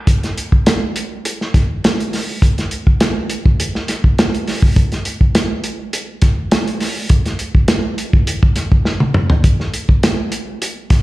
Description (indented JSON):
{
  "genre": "funk",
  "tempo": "102 BPM",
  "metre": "4/4",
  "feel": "straight",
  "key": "none",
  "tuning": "none",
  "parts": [
    { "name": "warm soul drum kit", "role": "drums", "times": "0.1-11.0 s", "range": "hi-hat, kick drum, snare drum, toms", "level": "-14 LUFS", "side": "equal", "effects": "none" }
  ],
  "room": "moderate lush hall reverb, RT60 2.1 s",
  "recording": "live gig heard through the venue's PA, club reverb",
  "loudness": "-14 LUFS",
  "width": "side -18 dB against mid",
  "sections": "0.1-11.0 A section",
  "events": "drum fill 8.9-9.4",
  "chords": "none"
}